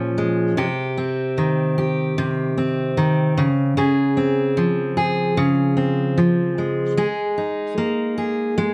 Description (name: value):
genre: pop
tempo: 75 BPM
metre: 4/4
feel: straight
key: unclear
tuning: A4 = 440 Hz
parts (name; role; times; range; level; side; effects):
- fingerpicked steel-string acoustic guitar; solo; 0.0-8.7 s; Bb2 to Ab4; -20 LUFS; equal; none
room: light reverb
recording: none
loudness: -20 LUFS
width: mono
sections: 0.0-8.7 A section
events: none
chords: 0.0 Bbm7; 0.6 Cm; 3.4 Dbmaj7; 7.0 Absus2